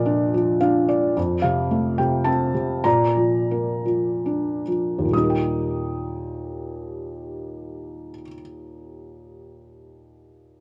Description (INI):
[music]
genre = classical, lyrical solo piano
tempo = 61-114 BPM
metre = 3/4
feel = rubato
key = Eb major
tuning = A4 = 442 Hz
[part]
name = felt-muted upright piano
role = solo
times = 0.0-10.6 s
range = Eb2 to Eb6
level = -23 LUFS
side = equal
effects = none
[sound]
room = moderate plate reverb, RT60 2.9 s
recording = worn, warbling old tape, cassette tape, warbly pitch drift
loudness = -22 LUFS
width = mono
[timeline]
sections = 0.0-1.2 A section; 1.2-5.1 B section; 5.1-10.6 C section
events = felt piano fill 0.3-1.2; slowing down 1.2-5.1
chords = 0.0 Bb; 1.2 F; 2.9 Bb; 5.1 Eb